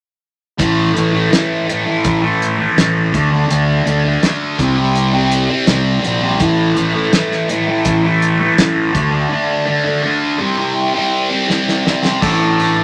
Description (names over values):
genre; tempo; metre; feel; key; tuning
psychedelic rock; 83 BPM; 4/4; straight; unclear; A4 = 440 Hz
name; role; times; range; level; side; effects
thick fuzz guitar; riff; 0.6-12.8 s; A2 to D4; -17 LUFS; equal; distortion, phaser
fuzz fingered electric bass; bass; 0.6-12.8 s; A1 to D2; -20 LUFS; equal; overdrive
damped 70s drum kit; drums; 0.6-12.8 s; crash cymbal, hi-hat, kick drum, snare drum; -19 LUFS; equal; none
overdriven combo organ; sustained chords; 12.2-12.8 s; D4 to A5; -20 LUFS; equal; none
room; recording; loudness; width
moderate studio reverb, RT60 0.6 s; none; -15 LUFS; mono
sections
0.6-12.2 A section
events
drum fill 11.5-12.2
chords
0.6 A5; 3.1 D5; 4.6 C5; 6.4 A5; 9.0 D5; 10.4 C5; 12.2 Asus4